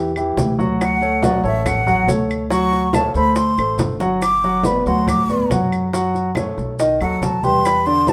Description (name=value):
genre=Afro-Cuban jazz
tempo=140 BPM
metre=4/4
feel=straight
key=D major, G major from 4.2 s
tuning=A4 = 440 Hz
part: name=warm grand piano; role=accompaniment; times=0.0-8.1 s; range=D3 to F#5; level=-22 LUFS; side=equal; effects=none
part: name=upright bass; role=bass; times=0.0-8.1 s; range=G1 to F#2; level=-26 LUFS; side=equal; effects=none
part: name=bongos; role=percussion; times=0.2-8.1 s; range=none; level=-28 LUFS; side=equal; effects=none
part: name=claves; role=percussion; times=0.2-7.9 s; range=none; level=-35 LUFS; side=equal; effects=none
part: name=congas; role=percussion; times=0.2-8.1 s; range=none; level=-28 LUFS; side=equal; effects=none
part: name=maracas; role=percussion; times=0.2-8.1 s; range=none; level=-40 LUFS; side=equal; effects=none
part: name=breathy jazz flute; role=melody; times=0.8-8.1 s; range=D5 to D6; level=-21 LUFS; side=equal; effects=none
room=moderate studio reverb, RT60 0.8 s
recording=none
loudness=-18 LUFS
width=mono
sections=0.0-4.2 A section; 4.2-8.1 A section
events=flute solo 0.0-8.1; drum fill 3.8-4.2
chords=0.0 A5 (rootless); 0.8 Dmaj7; 3.4 D7; 4.2 Gmaj7; 5.9 F#m; 6.8 B7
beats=0.38 | 0.81 1.23 1.66 2.09 | 2.52 2.94 3.37 3.80 | 4.23 4.65 5.08 5.51 | 5.94 6.37 6.79 7.22 | 7.65 8.08